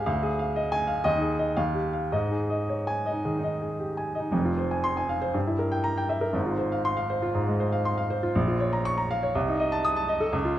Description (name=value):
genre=classical, virtuoso piano study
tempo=107-124 BPM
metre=4/4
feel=rubato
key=F minor from 4.3 s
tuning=A4 = 440 Hz
part: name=clear baby grand piano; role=solo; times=0.0-10.6 s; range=F1 to Eb6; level=-24 LUFS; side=equal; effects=none
room=moderate recital hall reverb, RT60 1.5 s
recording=close, detailed microphones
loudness=-24 LUFS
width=side -12 dB against mid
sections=0.0-4.3 A section; 4.3-10.6 B section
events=none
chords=0.1 Ddim; 1.1 Ab5/Eb; 1.6 Ebadd9; 2.1 Ab5; 4.3 Fm; 5.3 Edim/G; 6.3 Fm/Ab; 8.4 Bbm; 9.4 Adim/C